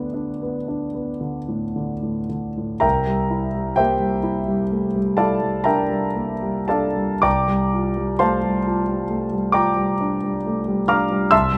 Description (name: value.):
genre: classical, impressionist solo piano.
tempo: 35-47 BPM (dotted quarters).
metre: 9/8.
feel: rubato.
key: unclear.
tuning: A4 = 440 Hz.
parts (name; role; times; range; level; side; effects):
warm concert grand piano; solo; 0.0-11.6 s; C2 to F6; -21 LUFS; equal; none.
room: little or no reverb.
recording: close, detailed microphones.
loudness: -22 LUFS.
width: mono.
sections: 0.0-2.8 A section; 2.8-11.6 B section.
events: none.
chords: 0.0 D5; 2.8 C9; 7.3 F69/C.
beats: 1.21 | 2.84 4.28 5.68 | 7.25 8.69 10.02 | 11.32.